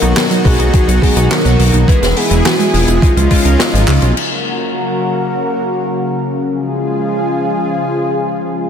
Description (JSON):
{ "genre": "synthwave", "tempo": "105 BPM", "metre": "4/4", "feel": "straight", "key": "F# major", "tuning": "A4 = 437 Hz", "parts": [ { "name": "soft octave-layered synth lead", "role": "melody", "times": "0.0-3.9 s", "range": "E#4 to B4", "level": "-19 LUFS", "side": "left 2 dB", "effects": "chorus, tremolo, ping-pong delay" }, { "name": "lush unison pad", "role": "sustained chords", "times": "0.0-8.7 s", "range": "B2 to A#4", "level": "-17 LUFS", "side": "left 1 dB", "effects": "chorus, sidechain pumping" }, { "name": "wide unison pluck", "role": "arpeggios", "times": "0.0-4.2 s", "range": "D#3 to E4", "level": "-21 LUFS", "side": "right 6 dB", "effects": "digital delay" }, { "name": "chorused polysynth", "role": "stabs", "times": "0.0-4.1 s", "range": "F#3 to A#4", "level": "-20 LUFS", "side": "left 3 dB", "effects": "digital delay" }, { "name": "wide detuned saw bass", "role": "bass", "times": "0.0-4.1 s", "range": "E1 to C#2", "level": "-12 LUFS", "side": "equal", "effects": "chorus" }, { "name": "open jazz drum kit", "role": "drums", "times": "0.0-4.3 s", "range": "crash cymbal, handclaps, hi-hat, snare drum", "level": "-18 LUFS", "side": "left 2 dB", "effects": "none" }, { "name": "electronic kick drum", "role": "drums", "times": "0.5-3.4 s", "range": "none", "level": "-12 LUFS", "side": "equal", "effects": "overdrive" } ], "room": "light reverb, small room ambience", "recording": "dense, heavily limited modern master", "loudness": "-11 LUFS", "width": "side -8 dB against mid", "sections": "0.0-4.2 A section; 4.2-8.7 B section", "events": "drum fill 3.9", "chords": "0.0 B; 1.9 E; 3.0 C#add9; 4.2 F#; 6.5 C#" }